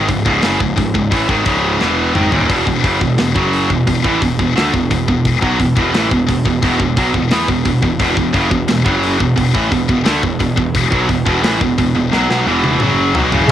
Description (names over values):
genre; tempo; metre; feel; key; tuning
heavy metal; 87 BPM; 4/4; straight; unclear; A4 = 441 Hz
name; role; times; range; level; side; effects
heavy high-gain guitar; riff; 0.0-13.5 s; C#2 to B3; -18 LUFS; left 8 dB; distortion, cassette tape
tight distorted guitar; riff; 0.0-13.5 s; C#2 to B3; -17 LUFS; right 6 dB; distortion, cassette tape
fuzz picked electric bass; bass; 0.0-13.5 s; C#1 to E2; -20 LUFS; left 1 dB; overdrive
tight metal drum kit; drums; 0.1-13.5 s; china cymbal, crash cymbal, hi-hat, kick drum, snare drum, toms; -19 LUFS; left 1 dB; cassette tape
room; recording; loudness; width
small room reverb; home recording on cassette; -12 LUFS; side -11 dB against mid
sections
0.0-13.5 A section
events
drum fill 1.8-2.5, 12.1-13.5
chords
0.0 C#m; 2.5 E5